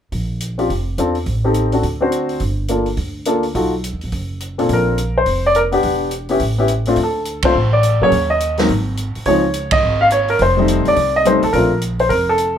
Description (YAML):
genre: jazz piano trio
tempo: 210 BPM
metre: 4/4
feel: swing 62% on 8ths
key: Bb major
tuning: A4 = 440 Hz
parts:
  - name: upright bass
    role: bass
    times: 0.1-12.6 s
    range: E1 to Bb2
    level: -21 LUFS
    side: right 1 dB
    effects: none
  - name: open jazz drum kit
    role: drums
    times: 0.1-12.5 s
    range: hi-hat, kick drum, ride cymbal, snare drum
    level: -26 LUFS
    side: right 2 dB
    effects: none
  - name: warm baby grand piano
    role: melody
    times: 0.6-12.6 s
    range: Bb2 to Gb5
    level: -15 LUFS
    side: left 1 dB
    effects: none
room: light reverb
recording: none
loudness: -14 LUFS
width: side -9 dB against mid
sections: 0.1-4.7 A section; 4.7-12.6 B section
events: band accent 7.4, 9.7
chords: 0.1 Bb; 1.3 Am7b5; 1.8 D7; 2.4 Gm9; 3.6 B7(no3); 4.7 Bbmaj7; 5.8 Em7; 6.4 N.C.; 7.0 D7(no3); 8.1 N.C.; 9.3 Db5; 10.4 F7; 11.5 Bbmaj7(no3)